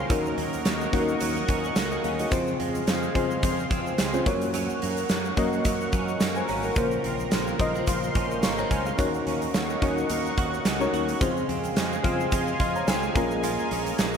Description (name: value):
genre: 1980s-style pop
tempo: 108 BPM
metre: 4/4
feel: swing 55% on 16ths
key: unclear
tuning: A4 = 440 Hz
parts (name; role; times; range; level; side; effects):
- mellow FM electric piano; accompaniment; 0.0-14.2 s; Db3 to Db6; -28 LUFS; left 2 dB; chorus, tremolo
- sweeping resonant pad; sustained chords; 0.0-14.2 s; Ab4 to Db6; -32 LUFS; equal; chorus
- direct-recorded clean electric guitar; riff; 0.0-14.2 s; F3 to Gb4; -33 LUFS; right 8 dB; analog chorus, ping-pong delay
- fretless electric bass; bass; 0.0-14.2 s; Ab1 to Gb2; -34 LUFS; equal; analog chorus
- huge arena drum kit; drums; 0.1-14.1 s; hi-hat, kick drum, snare drum, tambourine; -27 LUFS; equal; gated reverb
- egg shaker; percussion; 0.1-14.2 s; none; -46 LUFS; left 8 dB; none
room: moderate plate reverb, RT60 2.5 s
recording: bright 1980s-style digital production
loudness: -23 LUFS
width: side -7 dB against mid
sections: 0.0-14.2 A section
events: none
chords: 0.1 Ebm7; 2.3 Dbmaj7/F; 4.3 Gb; 6.8 Bbmadd9; 9.0 Ebm7; 11.2 Dbmaj7/F; 13.2 Bbm7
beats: | 0.10 0.65 1.21 1.76 | 2.32 2.88 3.43 3.99 | 4.54 5.10 5.65 6.21 | 6.76 7.32 7.88 8.43 | 8.99 9.54 10.10 10.65 | 11.21 11.77 12.32 12.88 | 13.43 13.99